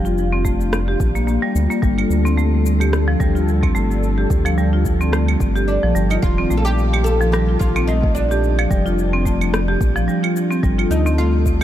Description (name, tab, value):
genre	organic downtempo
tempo	109 BPM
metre	4/4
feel	swing 56% on 16ths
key	G minor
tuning	A4 = 440 Hz
part	warm analog pad	sustained chords	0.0-11.6 s	Eb3 to A4	-25 LUFS	right 1 dB	chorus, sidechain pumping, shimmer reverb
part	marimba with hard mallets	arpeggios	0.0-11.6 s	F3 to G4	-21 LUFS	equal	low-pass filter, digital delay, shimmer reverb
part	round analog bass	bass	0.0-11.6 s	Eb1 to D2	-19 LUFS	equal	sidechain pumping
part	electronic cabasa, rim click and claves	drums	0.1-11.6 s	none	-27 LUFS	right 2 dB	overdrive, studio reverb
part	electronic kick drum	drums	0.5-11.6 s	none	-20 LUFS	equal	overdrive, studio reverb
part	oud	melody	5.7-11.6 s	D4 to A4	-24 LUFS	equal	digital delay, shimmer reverb
room	light reverb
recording	dark, warm production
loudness	-15 LUFS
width	side -12 dB against mid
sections	0.0-10.6 A section; 10.6-11.6 A section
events	none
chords	0.0 Bb; 1.8 G7(no3); 6.2 Ebsus2; 8.4 Bb; 10.6 G7(no3)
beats	0.17 0.73 1.28 | 1.83 2.38 2.93 3.48 | 4.03 4.58 5.13 5.68 | 6.23 6.78 7.33 7.88 | 8.43 8.98 9.53 10.08 | 10.63 11.18